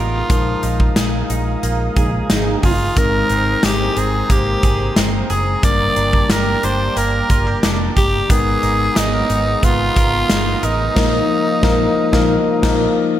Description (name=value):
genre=1980s-style pop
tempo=90 BPM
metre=4/4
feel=straight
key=unclear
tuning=A4 = 441 Hz
part: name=raspy tenor saxophone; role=melody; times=0.0-13.0 s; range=Eb4 to D5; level=-20 LUFS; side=right 1 dB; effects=none
part: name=bell-like tine electric piano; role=accompaniment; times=0.0-13.2 s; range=F3 to Bb4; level=-22 LUFS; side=left 5 dB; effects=none
part: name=warm analog pad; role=sustained chords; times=0.0-13.2 s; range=Ab3 to Eb6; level=-28 LUFS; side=right 2 dB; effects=chorus
part: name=direct-recorded clean electric guitar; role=riff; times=0.0-11.5 s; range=Eb3 to Bb4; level=-27 LUFS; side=right 5 dB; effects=lush chorus
part: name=vintage muted fingered electric bass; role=bass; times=0.0-12.9 s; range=F1 to Bb1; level=-21 LUFS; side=equal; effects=none
part: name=big rock drum kit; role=drums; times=0.3-12.8 s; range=crash cymbal, hi-hat, kick drum, snare drum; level=-18 LUFS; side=equal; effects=gated reverb
part: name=mellow synth brass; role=stabs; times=2.0-2.7, 11.0-12.9 s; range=F3 to Bb4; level=-25 LUFS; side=right 2 dB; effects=chorus
room=light reverb, small room ambience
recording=none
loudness=-14 LUFS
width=side -12 dB against mid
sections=0.0-13.2 A section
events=band accent 0.3-3.0, 11.0-13.2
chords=0.3 Bb7sus4; 3.0 Abadd9; 5.6 Gm; 8.3 Abmadd9; 11.0 Bbsus4